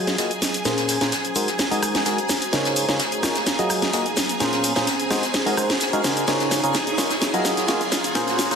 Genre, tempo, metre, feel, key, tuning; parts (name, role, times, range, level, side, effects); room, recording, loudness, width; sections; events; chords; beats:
piano house; 128 BPM; 4/4; straight; Db major; A4 = 440 Hz
string machine, violins; sustained chords; 0.0-8.6 s; Ab4 to Ab5; -28 LUFS; equal; ensemble chorus
percussive organ stab; riff; 0.0-8.6 s; Bb2 to F5; -24 LUFS; equal; chorus, digital delay
riser; sound effects; 1.2-8.6 s; -32 LUFS; right 2 dB
warbly tape-like pad; texture; 0.0-8.6 s; Eb4 to Bb5; -30 LUFS; equal; chorus, built-in reverb, phaser
house drum kit; drums; 0.1-8.6 s; hi-hat, rim click, shaker, snare drum; -23 LUFS; equal; soft clipping on snare
snare drum and shaker; drums; 0.1-8.6 s; -31 LUFS; left 1 dB; soft clipping on snare, high-pass filter on snare, high-pass filter on perc, high-pass filter on room
wet lush hall reverb, RT60 1.6 s; dense, heavily limited modern master, high-pass filter, lossy compression artefacts; -19 LUFS; side -6 dB against mid
0.0-8.6 A section
build-up 0.0-8.6; drum fill 0.0-8.6; filter sweep on synth stab 0.0-8.6; riser 1.2-8.6
0.4 Bbm9; 1.4 Ab9; 2.5 Db69; 3.5 Gbmaj9; 4.2 Bbm9; 5.1 Ab9; 6.3 Db69; 7.2 Gbmaj9; 7.9 Bbm9
0.18 | 0.65 1.12 1.59 2.06 | 2.53 3.00 3.47 3.94 | 4.40 4.87 5.34 5.81 | 6.28 6.75 7.22 7.68 | 8.15